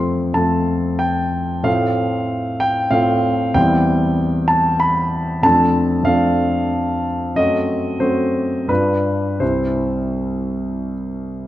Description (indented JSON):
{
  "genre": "classical, romantic character piece for solo piano",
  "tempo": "77-100 BPM",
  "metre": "3/4",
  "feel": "rubato",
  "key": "C major",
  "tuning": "A4 = 440 Hz",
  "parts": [
    { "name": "warm concert grand piano", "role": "solo", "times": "0.0-11.5 s", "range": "C2 to C6", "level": "-16 LUFS", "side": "equal", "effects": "none" }
  ],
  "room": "moderate scoring stage reverb, RT60 2.1 s",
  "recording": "none",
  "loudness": "-16 LUFS",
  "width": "side -14 dB against mid",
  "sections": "0.0-11.5 A section",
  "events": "none",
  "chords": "0.0 F; 1.7 F/A; 3.6 C/E; 5.4 Dm7/F; 7.4 F#dim7; 8.7 G7; 9.4 C",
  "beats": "0.36 1.02 | 1.66 2.30 2.93 | 3.57 4.20 4.83 | 5.44 6.07 6.72 | 7.38 8.02 8.69 | 9.41 10.18 10.93"
}